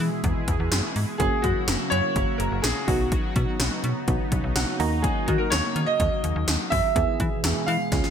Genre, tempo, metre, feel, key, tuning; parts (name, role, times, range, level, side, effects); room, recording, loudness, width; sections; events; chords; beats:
synth-pop; 125 BPM; 4/4; straight; A4 = 440 Hz
FM electric piano with tremolo; accompaniment; 0.0-8.1 s; A#3 to A#5; -31 LUFS; right 6 dB
sweeping resonant pad; sustained chords; 0.0-8.1 s; B2 to G#4; -31 LUFS; left 1 dB; chorus
slap-like FM bass; bass; 0.0-8.0 s; F#1 to E3; -26 LUFS; equal
80s electronic pad drums; drums; 0.0-8.1 s; hi-hat, kick drum, snare drum; -26 LUFS; equal; gated reverb
warm grand piano; melody; 1.2-8.1 s; F#4 to E#5; -26 LUFS; right 1 dB; lush chorus, ping-pong delay
light reverb; bright 1980s-style digital production; -21 LUFS; side -8 dB against mid
0.0-8.1 A section
FM electric piano fill 4.3-5.0; drum fill 7.9
0.0 E; 1.2 F#7; 2.9 Badd9; 4.8 D#m7; 7.0 E
0.24 0.72 | 1.20 1.68 2.16 2.64 | 3.12 3.60 4.08 4.56 | 5.04 5.52 6.00 6.48 | 6.96 7.44 7.92